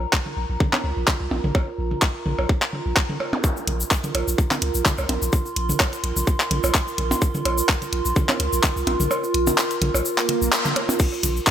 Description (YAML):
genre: minimal techno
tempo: 127 BPM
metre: 4/4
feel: swing 55% on 16ths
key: unclear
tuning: A4 = 440 Hz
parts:
  - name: punchy sub bass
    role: bass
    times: 0.0-11.4 s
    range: Bb1 to Db2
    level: -25 LUFS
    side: equal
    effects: sidechain pumping
  - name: warbly tape-like pad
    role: texture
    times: 0.0-11.5 s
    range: F4 to C6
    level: -27 LUFS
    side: right 2 dB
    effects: chorus, built-in reverb, sidechain pumping
  - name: electronic kick drum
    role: drums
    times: 0.1-11.5 s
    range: none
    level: -20 LUFS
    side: equal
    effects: overdrive, small room ambience
  - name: garage drum kit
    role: drums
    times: 0.1-11.5 s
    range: crash cymbal, handclaps, hi-hat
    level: -23 LUFS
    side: left 1 dB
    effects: overdrive, small room ambience
  - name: electronic toms and percussion blips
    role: percussion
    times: 0.3-11.3 s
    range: none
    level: -27 LUFS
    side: right 1 dB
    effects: small room ambience
  - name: zap and swell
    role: sound effects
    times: 3.3-3.4, 10.2-11.0 s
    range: none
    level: -31 LUFS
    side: right 3 dB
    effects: none
  - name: tube shaker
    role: percussion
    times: 3.4-11.5 s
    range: none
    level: -29 LUFS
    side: left 4 dB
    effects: none
room: moderate lush hall reverb, RT60 2.0 s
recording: none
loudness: -19 LUFS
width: side -10 dB against mid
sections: 0.0-11.0 A section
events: kick drops out 9.1-11.0; swell 10.2-11.0; band accent 10.5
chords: 0.0 Bb5